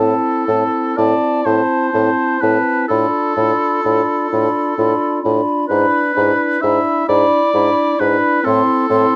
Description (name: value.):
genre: classical, slow romantic movement for wind quintet.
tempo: 40-45 BPM (dotted quarters).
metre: 6/8.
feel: rubato.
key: A minor.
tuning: A4 = 440 Hz.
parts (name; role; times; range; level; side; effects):
mellow hollow silver concert flute; melody; 0.0-9.2 s; A5 to C6; -22 LUFS; equal; none.
warm oboe; second line; 0.0-9.2 s; A4 to E5; -21 LUFS; equal; none.
clear French horn; accompaniment; 0.0-9.2 s; C4 to D4; -24 LUFS; equal; none.
clear clarinet; accompaniment; 0.0-9.2 s; E4 to F4; -26 LUFS; equal; none.
clear bassoon; bass; 0.0-9.1 s; G#2 to A2; -19 LUFS; equal; none.
room: light reverb.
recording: dark, warm production.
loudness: -16 LUFS.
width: mono.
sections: 0.0-9.2 A section.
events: none.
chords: 0.0 Am; 2.9 Bm7b5/A; 5.7 E7/G#; 8.5 Am.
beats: 1.46 | 2.90 4.32 | 5.70 7.08 | 8.45.